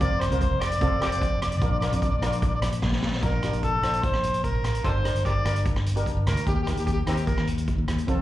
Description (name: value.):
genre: calypso.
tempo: 148 BPM.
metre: 4/4.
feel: straight.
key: Bb major.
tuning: A4 = 444 Hz.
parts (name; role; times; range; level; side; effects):
overdriven harmonica; melody; 0.0-7.5 s; C4 to D5; -28 LUFS; left 1 dB; slapback echo.
steel pan; accompaniment; 0.0-8.2 s; C4 to C5; -33 LUFS; equal; slapback echo.
fingered electric bass; bass; 0.0-8.2 s; F1 to F2; -26 LUFS; equal; none.
street-band drum kit; drums; 0.0-8.2 s; hi-hat, kick drum, rim click, snare drum; -28 LUFS; equal; none.
room: studio reverb.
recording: live gig heard through the venue's PA, club reverb.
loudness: -22 LUFS.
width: side -14 dB against mid.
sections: 0.0-3.2 A section; 3.2-8.2 B section.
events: drum fill 2.8-3.2; harmonica solo 3.2-8.2.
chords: 0.0 Fsus4; 0.8 F; 1.6 Bb; 3.2 Bbmaj7; 4.8 Gm; 6.5 Eb.